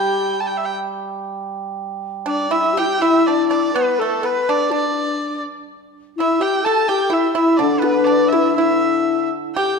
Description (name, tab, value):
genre	chinese traditional, Chinese chamber ensemble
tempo	61 BPM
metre	2/4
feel	rubato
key	G gong mode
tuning	A4 = 440 Hz
part	clear erhu	melody	0.0-9.8 s	A4 to A5	-21 LUFS	right 2 dB	none
part	mellow xiao	second line	0.0-9.8 s	D4 to B4	-19 LUFS	left 5 dB	none
part	pipa	second line	0.0-9.8 s	A3 to A4	-23 LUFS	right 5 dB	none
part	hammered dulcimer	accompaniment	0.0-2.8, 7.6-9.8 s	D3 to G3	-23 LUFS	left 2 dB	none
room	wet recital hall reverb, RT60 1.7 s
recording	dark, warm production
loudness	-16 LUFS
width	side -4 dB against mid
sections	0.0-1.8 A section; 1.8-9.8 B section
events	none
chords	none